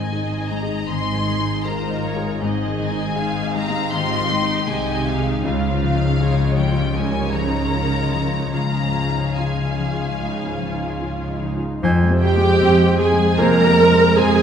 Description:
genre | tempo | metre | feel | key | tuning
cinematic, emotional film score for orchestra | 77 BPM | 4/4 | rubato | unclear | A4 = 439 Hz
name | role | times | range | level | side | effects
warm studio violin section | melody | 0.0-14.4 s | F5 to C6 | -27 LUFS | left 3 dB | none
warm studio violin section | second line | 0.0-14.4 s | F4 to Bb5 | -28 LUFS | left 2 dB | none
clear concert grand piano | accompaniment | 0.0-14.4 s | Db2 to Eb5 | -25 LUFS | equal | none
dark studio viola section | accompaniment | 0.0-14.4 s | G3 to Bb4 | -23 LUFS | right 2 dB | none
concert harp | arpeggios | 0.0-14.4 s | F2 to C6 | -25 LUFS | left 8 dB | none
dark studio cello section | bass | 0.0-14.4 s | Ab2 to Bb3 | -26 LUFS | right 2 dB | none
rich studio double bass section | bass | 0.0-14.4 s | Ab1 to F2 | -24 LUFS | right 2 dB | none
clear clarinet | second line | 11.8-13.7 s | C5 | -30 LUFS | left 3 dB | none
warm oboe | second line | 11.8-13.7 s | Ab5 | -28 LUFS | right 1 dB | none
mellow French horn section | sustained chords | 11.8-14.4 s | Ab3 to C4 | -25 LUFS | right 2 dB | none
mellow hollow silver concert flute | second line | 12.2-14.4 s | G5 to Bb5 | -28 LUFS | equal | none
room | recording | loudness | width
wet scoring stage reverb, RT60 1.7 s | none | -17 LUFS | side -8 dB against mid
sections
0.0-11.8 A section; 11.8-14.4 A section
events
none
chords
0.0 Ab; 5.4 Dbadd9; 11.8 Fm

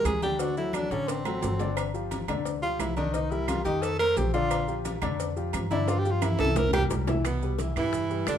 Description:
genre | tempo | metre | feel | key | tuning
Afro-Cuban jazz | 175 BPM | 4/4 | straight | unclear | A4 = 439 Hz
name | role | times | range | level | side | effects
breathy tenor saxophone | melody | 0.0-8.4 s | B3 to Bb4 | -29 LUFS | right 2 dB | none
warm grand piano | accompaniment | 0.0-8.4 s | D3 to E5 | -31 LUFS | left 5 dB | none
upright bass | bass | 0.0-8.4 s | G1 to G2 | -31 LUFS | equal | none
claves | percussion | 0.1-8.4 s | none | -40 LUFS | right 10 dB | none
congas | percussion | 0.1-8.4 s | none | -36 LUFS | equal | none
cowbell and bongos | percussion | 0.1-8.4 s | none | -37 LUFS | left 6 dB | none
maracas | percussion | 0.1-8.4 s | none | -45 LUFS | right 8 dB | none
timbales and agogo bells | percussion | 0.1-8.4 s | none | -36 LUFS | right 7 dB | none
breathy baritone saxophone | second line | 7.3-8.4 s | B2 to E3 | -32 LUFS | right 7 dB | none
room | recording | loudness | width
light reverb | minimal, uncompressed stereo recording | -25 LUFS | side -9 dB against mid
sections
0.0-7.2 A section; 7.2-8.4 B section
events
tenor saxophone solo 0.0-7.2; drum fill 1.1-1.8, 5.9-7.2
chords
0.4 D7; 1.8 G5; 3.1 Cm7; 3.8 F7; 4.5 Bb6; 5.9 G5; 6.6 C7; 7.2 Cmaj7

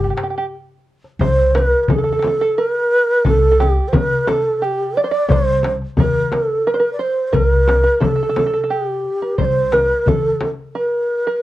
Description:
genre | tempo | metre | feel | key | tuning
Arabic maqam ensemble | 88 BPM | 3/4 | straight | C maqam rast | A4 = 439 Hz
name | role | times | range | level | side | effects
breathy low ney | melody | 0.0-11.4 s | G4 to D5 | -17 LUFS | right 1 dB | none
open-back banjo | second line | 0.0-11.4 s | G4 to D5 | -22 LUFS | right 3 dB | none
upright bass | bass | 0.0-10.3 s | C2 to C3 | -20 LUFS | equal | none
darbuka | percussion | 0.2-10.6 s | none | -22 LUFS | left 4 dB | none
frame drum | percussion | 1.2-10.6 s | none | -22 LUFS | left 1 dB | none
room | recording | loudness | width
light reverb | worn, warbling old tape, cassette tape, warbly pitch drift | -14 LUFS | side -15 dB against mid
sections
0.0-1.2 A section; 1.2-11.4 B section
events
none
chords
none

